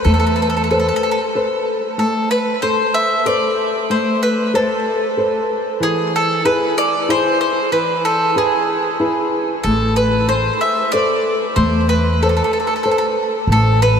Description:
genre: italian folk, Italian serenade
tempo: 94 BPM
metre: 3/4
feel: straight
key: A harmonic minor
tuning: A4 = 440 Hz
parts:
  - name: bowl-back mandolin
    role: melody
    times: 0.0-14.0 s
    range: G#4 to E5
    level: -17 LUFS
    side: equal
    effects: tape echo
  - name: flamenco guitar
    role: accompaniment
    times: 0.1-14.0 s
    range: E3 to C5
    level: -18 LUFS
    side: left 1 dB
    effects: none
  - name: upright bass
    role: bass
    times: 0.1-0.9, 9.6-14.0 s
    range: A1 to E2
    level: -17 LUFS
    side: equal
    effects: none
room: wet huge ambient reverb, RT60 8.3 s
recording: dreamy mix soaked in reverb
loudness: -14 LUFS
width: side -7 dB against mid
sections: 0.0-2.0 A section; 2.0-14.0 A section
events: none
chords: 0.0 Amadd9; 5.8 E; 9.6 Amadd9

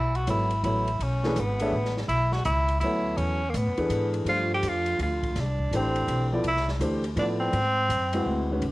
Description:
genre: modal jazz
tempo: 166 BPM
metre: 3/4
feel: swing 64% on 8ths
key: unclear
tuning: A4 = 440 Hz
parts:
  - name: breathy tenor saxophone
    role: melody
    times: 0.0-8.4 s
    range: A#3 to G4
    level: -27 LUFS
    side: equal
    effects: cassette tape, plate reverb
  - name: upright bass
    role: bass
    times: 0.0-8.7 s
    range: G#1 to A2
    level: -28 LUFS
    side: equal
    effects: none
  - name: open jazz drum kit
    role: drums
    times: 0.1-8.7 s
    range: hi-hat, kick drum, ride cymbal, snare drum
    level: -38 LUFS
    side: equal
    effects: cassette tape
  - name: warm grand piano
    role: accompaniment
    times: 0.3-8.6 s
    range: D#3 to E5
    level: -29 LUFS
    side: equal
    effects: cassette tape, plate reverb
room: moderate small room reverb, RT60 0.5 s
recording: home recording on cassette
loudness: -24 LUFS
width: side -19 dB against mid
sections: 0.0-8.6 A section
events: none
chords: 0.0 B9sus4; 4.3 G9sus4; 7.5 G#7alt

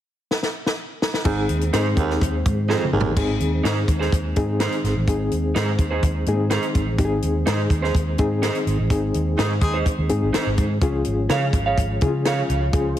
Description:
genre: uptempo 1960s-style soul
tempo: 125 BPM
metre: 4/4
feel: straight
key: Ab major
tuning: A4 = 439 Hz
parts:
  - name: compact cocktail drum kit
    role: drums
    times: 0.3-13.0 s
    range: crash cymbal, hi-hat, kick drum, snare drum, toms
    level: -23 LUFS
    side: equal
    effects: none
  - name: reed electric piano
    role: accompaniment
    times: 1.2-13.0 s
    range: Bb3 to Ab4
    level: -25 LUFS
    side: left 3 dB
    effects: fast tremolo
  - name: percussive tonewheel organ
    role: sustained chords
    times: 1.3-13.0 s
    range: Eb3 to C5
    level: -30 LUFS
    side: right 1 dB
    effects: fast rotary speaker, chorus vibrato
  - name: warm baritone saxophone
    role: riff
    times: 1.3-3.1 s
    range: Eb2 to Ab2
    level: -27 LUFS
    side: right 6 dB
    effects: none
  - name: vintage muted fingered electric bass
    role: bass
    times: 1.3-12.9 s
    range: Ab1 to Db3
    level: -23 LUFS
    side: equal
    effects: none
  - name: electric guitar through a small old amp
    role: stabs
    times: 1.7-12.4 s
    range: Eb4 to F5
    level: -27 LUFS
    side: right 4 dB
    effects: tape echo
  - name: clear horn section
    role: second line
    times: 9.4-9.8 s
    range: C4 to Ab4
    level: -29 LUFS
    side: left 1 dB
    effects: none
room: light reverb, small room ambience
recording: heavily compressed radio sound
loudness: -19 LUFS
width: side -11 dB against mid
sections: 0.0-1.3 A section; 1.3-3.2 B section; 3.2-13.0 C section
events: drum fill 0.3-1.3, 2.7-3.2; band accent 8.9-10.8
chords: 0.0 N.C.; 1.3 Ab; 10.8 Db

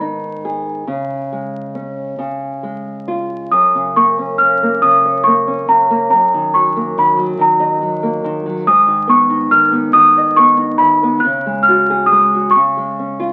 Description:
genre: children's music, lullaby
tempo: 46 BPM (dotted quarters)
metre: 6/8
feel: rubato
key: F# major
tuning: A4 = 435 Hz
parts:
  - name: worn celesta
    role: melody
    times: 0.0-13.3 s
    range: A#5 to F#6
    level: -14 LUFS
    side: equal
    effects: none
  - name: nylon-string guitar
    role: accompaniment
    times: 0.0-13.3 s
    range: F#2 to D#5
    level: -22 LUFS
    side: equal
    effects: none
room: moderate large studio reverb, RT60 1.2 s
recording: very old 78 rpm record, vinyl crackle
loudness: -14 LUFS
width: mono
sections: 0.0-3.5 A section; 3.5-13.3 B section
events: none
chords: 0.0 G#m; 0.9 C#5; 2.2 C#; 3.5 F#; 6.1 D#m/F#; 8.7 G#m; 11.2 C#sus4; 12.6 C#

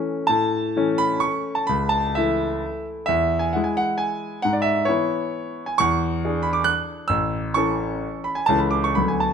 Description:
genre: classical, romantic triple-time dance for piano with dotted rhythms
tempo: 111-141 BPM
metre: 3/4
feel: rubato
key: A major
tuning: A4 = 440 Hz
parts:
  - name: clear concert grand piano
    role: solo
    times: 0.0-9.3 s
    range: A1 to F#6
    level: -20 LUFS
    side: equal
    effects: none
room: moderate recital hall reverb, RT60 1.6 s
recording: close, detailed microphones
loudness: -20 LUFS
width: side -7 dB against mid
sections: 0.3-9.3 A section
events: none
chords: 0.3 A; 1.7 A/C#; 3.1 E; 4.4 E/G#; 5.8 E7; 7.1 A; 8.5 A/C#

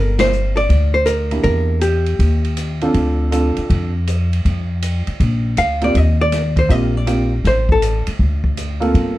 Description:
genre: jazz, small-group swing and bop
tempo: 160 BPM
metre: 4/4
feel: swing 65% on 8ths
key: unclear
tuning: A4 = 440 Hz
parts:
  - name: archtop guitar, miked and amplified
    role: melody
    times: 0.0-2.8, 5.6-8.1 s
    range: G4 to F5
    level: -19 LUFS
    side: equal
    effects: none
  - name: upright bass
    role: bass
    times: 0.0-9.2 s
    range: G1 to F2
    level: -17 LUFS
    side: equal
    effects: none
  - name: open jazz drum kit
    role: drums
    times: 0.2-9.1 s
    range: hi-hat, kick drum, ride cymbal, snare drum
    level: -24 LUFS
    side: equal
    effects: none
  - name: warm baby grand piano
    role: accompaniment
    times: 1.3-9.2 s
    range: Bb3 to A4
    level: -20 LUFS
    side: right 2 dB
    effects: none
room: little or no reverb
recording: dark, warm production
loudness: -14 LUFS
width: side -16 dB against mid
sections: 0.0-9.2 A section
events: band accent 0.1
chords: 0.0 Gmadd11; 1.5 Em7b5; 2.2 Ebadd9; 3.0 Dm7; 4.5 N.C.; 5.2 Bb; 6.0 Eb6; 7.5 Am; 8.2 D5

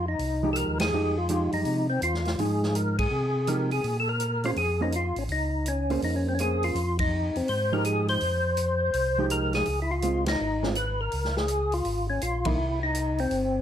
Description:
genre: soul jazz organ trio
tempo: 165 BPM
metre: 4/4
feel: swing 65% on 8ths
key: F minor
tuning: A4 = 440 Hz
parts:
  - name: percussive tonewheel organ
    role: melody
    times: 0.0-13.6 s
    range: C4 to C5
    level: -27 LUFS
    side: left 2 dB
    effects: slow rotary speaker, chorus vibrato, plate reverb
  - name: mellow tonewheel organ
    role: bass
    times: 0.0-13.6 s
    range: G1 to C3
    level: -29 LUFS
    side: equal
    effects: chorus vibrato, slow rotary speaker
  - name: vintage drum kit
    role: drums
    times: 0.2-13.4 s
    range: hi-hat, kick drum, ride cymbal, snare drum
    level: -35 LUFS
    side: right 1 dB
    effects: none
  - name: hollow-body jazz guitar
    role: accompaniment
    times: 0.4-12.6 s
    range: E3 to C5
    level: -30 LUFS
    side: right 3 dB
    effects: none
room: moderate large studio reverb, RT60 1.1 s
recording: none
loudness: -24 LUFS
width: side -10 dB against mid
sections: 0.0-13.6 A section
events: band accent 0.7, 2.9, 6.9, 10.2, 12.4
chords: 0.0 Fm9; 3.8 Bbm9; 6.8 Fm9; 9.7 Db; 12.6 C

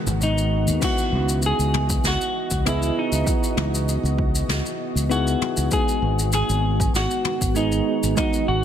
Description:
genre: sunset chillout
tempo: 98 BPM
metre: 4/4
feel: straight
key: C# minor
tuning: A4 = 443 Hz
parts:
  - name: semi-hollow electric guitar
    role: melody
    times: 0.0-8.6 s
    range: D#4 to G#4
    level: -25 LUFS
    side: equal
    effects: tape echo
  - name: soft electric-piano-like synth keys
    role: accompaniment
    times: 0.0-8.6 s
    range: E3 to D#5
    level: -27 LUFS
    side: moving between left 9 dB and right 7 dB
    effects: chorus, auto-pan
  - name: shimmering ambient pad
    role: sustained chords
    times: 0.0-8.6 s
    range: D#3 to D#5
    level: -30 LUFS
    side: right 1 dB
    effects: chorus, built-in reverb
  - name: fingered electric bass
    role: bass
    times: 0.1-8.6 s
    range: G#1 to D#2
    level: -23 LUFS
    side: equal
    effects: none
  - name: jazz brush drum kit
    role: drums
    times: 0.1-8.4 s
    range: crash cymbal, shaker, snare drum, toms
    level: -28 LUFS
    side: left 2 dB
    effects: none
  - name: electronic kick drum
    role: drums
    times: 0.8-8.3 s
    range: none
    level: -25 LUFS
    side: equal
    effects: overdrive
room: light reverb, studio reverb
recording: none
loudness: -19 LUFS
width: side -9 dB against mid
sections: 0.8-8.6 A section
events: none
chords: 0.0 G#m7; 0.8 C#m11; 5.7 G#m7

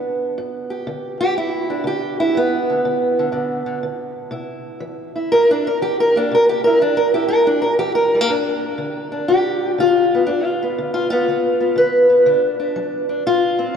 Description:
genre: acoustic country blues, solo or duo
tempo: 121 BPM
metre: 4/4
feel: swing 66% on 8ths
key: G mixolydian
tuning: A4 = 440 Hz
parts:
  - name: fingerpicked steel-string acoustic guitar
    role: solo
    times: 0.0-13.8 s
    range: G2 to B4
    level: -16 LUFS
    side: equal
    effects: none
room: wet cathedral reverb, RT60 4.4 s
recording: recorded in a church or concert hall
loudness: -15 LUFS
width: side -7 dB against mid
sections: 0.0-13.8 A section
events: steel-string acoustic guitar solo 0.0-13.8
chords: 0.0 G; 4.3 C7; 8.3 G7; 12.3 D

